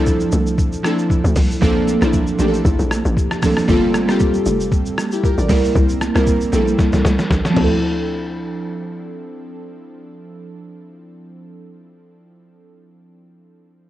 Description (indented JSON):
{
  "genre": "amapiano",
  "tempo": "116 BPM",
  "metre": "4/4",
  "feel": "swing 55% on 16ths",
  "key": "D minor",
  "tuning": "A4 = 439 Hz",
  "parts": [
    { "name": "glassy digital keys", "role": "accompaniment", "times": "0.0-13.9 s", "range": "F3 to A5", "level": "-19 LUFS", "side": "right 1 dB", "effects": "chorus" },
    { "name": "hollow log drum bass", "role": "bass", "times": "0.0-11.8 s", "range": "F1 to D2", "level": "-20 LUFS", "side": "equal", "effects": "none" },
    { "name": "trip hop sampler-style drum kit", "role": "drums", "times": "0.1-7.7 s", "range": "crash cymbal, hi-hat, kick drum, rim click, shaker, snare drum", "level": "-20 LUFS", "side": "equal", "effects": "cassette tape" },
    { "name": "congas", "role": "percussion", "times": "0.1-8.0 s", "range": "none", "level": "-28 LUFS", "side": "right 3 dB", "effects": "none" }
  ],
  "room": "light reverb, digital ambience",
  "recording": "home recording on cassette",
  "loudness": "-14 LUFS",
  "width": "side -14 dB against mid",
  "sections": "0.0-7.8 A section; 7.8-12.0 B section",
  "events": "drop 0.0-7.8; drum fill 6.8-7.8",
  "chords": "0.0 Dm9; 1.6 Bbmaj9; 3.7 Gm11; 5.5 C7; 7.6 Dm9"
}